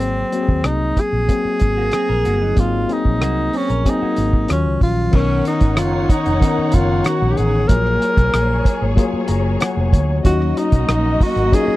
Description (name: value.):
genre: lush 1970s-style soul.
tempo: 94 BPM.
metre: 4/4.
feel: straight.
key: unclear.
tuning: A4 = 442 Hz.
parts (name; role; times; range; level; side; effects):
warm tenor saxophone; melody; 0.0-11.8 s; C4 to Bb4; -20 LUFS; equal; none.
tine electric piano; accompaniment; 0.0-11.8 s; Eb3 to Bb5; -22 LUFS; left 5 dB; overdrive.
vintage muted fingered electric bass; bass; 0.0-11.7 s; F1 to Eb2; -20 LUFS; equal; tube saturation.
cloth-damped thuddy drum kit; drums; 0.3-11.7 s; crash cymbal, hi-hat, kick drum, rim click; -16 LUFS; equal; none.
electric guitar through a small old amp; riff; 1.8-4.5 s; Gb3 to Bb4; -26 LUFS; right 7 dB; none.
muted studio string section; second line; 5.1-11.8 s; Bb3 to F#5; -24 LUFS; equal; none.
room: little or no reverb.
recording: dry, close 1970s-style studio recording.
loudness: -15 LUFS.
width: side -16 dB against mid.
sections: 0.0-5.1 A section; 5.1-11.8 B section.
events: tine electric piano fill 9.0-10.2.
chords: 0.0 Ab9; 4.5 Ebm9; 5.1 Bmaj9; 7.7 Gbmaj9; 10.2 Ebm9.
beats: | 0.01 0.65 1.29 1.93 | 2.58 3.21 3.85 4.50 | 5.13 5.77 6.41 7.05 | 7.69 8.33 8.97 9.61 | 10.25 10.89 11.53.